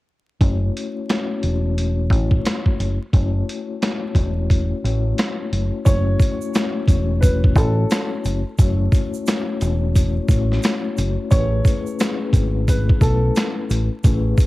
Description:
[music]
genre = hip hop, boom-bap hip-hop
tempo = 88 BPM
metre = 4/4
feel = swing 62% on 16ths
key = F# minor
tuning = A4 = 440 Hz
[part]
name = vibraphone with soft mallets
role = accompaniment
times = 0.4-14.5 s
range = A3 to C#5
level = -26 LUFS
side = left 5 dB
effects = high-pass filter, low-pass filter
[part]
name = deep dub fingered electric bass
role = bass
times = 0.4-14.3 s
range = E1 to B1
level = -20 LUFS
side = equal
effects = none
[part]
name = boom bap sampler-style drum kit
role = drums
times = 0.4-14.5 s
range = hi-hat, kick drum, snare drum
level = -18 LUFS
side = equal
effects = cassette tape
[part]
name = dark upright piano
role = melody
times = 5.9-13.5 s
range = A4 to C#5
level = -27 LUFS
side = right 1 dB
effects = high-pass filter, low-pass filter, cassette tape, analog delay
[part]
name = egg shaker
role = percussion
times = 5.9-14.5 s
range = none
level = -40 LUFS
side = right 10 dB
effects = none
[sound]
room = small room reverb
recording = home recording on cassette, vinyl crackle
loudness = -17 LUFS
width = side -18 dB against mid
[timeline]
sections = 0.4-5.9 A section; 5.9-14.5 B section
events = filter sweep on vibraphone 0.4-5.9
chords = 0.4 F#m7; 11.3 Amaj9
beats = | 0.41 1.09 1.77 2.45 | 3.13 3.81 4.50 5.18 | 5.86 6.54 7.22 7.91 | 8.59 9.27 9.95 10.63 | 11.31 12.00 12.68 13.36 | 14.04

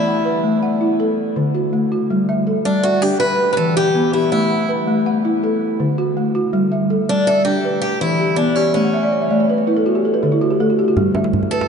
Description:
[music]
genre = west african traditional, West African string and xylophone music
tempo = 108 BPM (dotted quarters)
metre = 12/8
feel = straight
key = G lydian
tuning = A4 = 438 Hz
[part]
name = picked swing-style acoustic guitar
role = melody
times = 0.0-11.7 s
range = C#4 to B4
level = -20 LUFS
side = right 1 dB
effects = none
[part]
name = balafon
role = arpeggios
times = 0.0-11.7 s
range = D3 to F#5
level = -16 LUFS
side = equal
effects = none
[part]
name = djembe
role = percussion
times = 11.0-11.7 s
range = none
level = -22 LUFS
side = right 2 dB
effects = none
[sound]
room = wet cathedral reverb, RT60 6.3 s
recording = in a vast, echoing space, nothing above 10.4 kHz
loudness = -15 LUFS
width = side -6 dB against mid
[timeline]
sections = 0.0-11.0 A section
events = balafon fill 8.8-11.0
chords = 0.0 A5; 1.0 D; 2.1 G5; 3.2 Em; 4.3 A5; 5.4 D; 6.5 G5; 7.6 Em; 8.8 A; 9.9 D5; 11.0 G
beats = 0.44 0.99 1.55 | 2.10 2.65 3.21 3.76 | 4.32 4.87 5.43 5.98 | 6.54 7.09 7.64 8.20 | 8.75 9.31 9.86 10.41 | 10.97 11.52

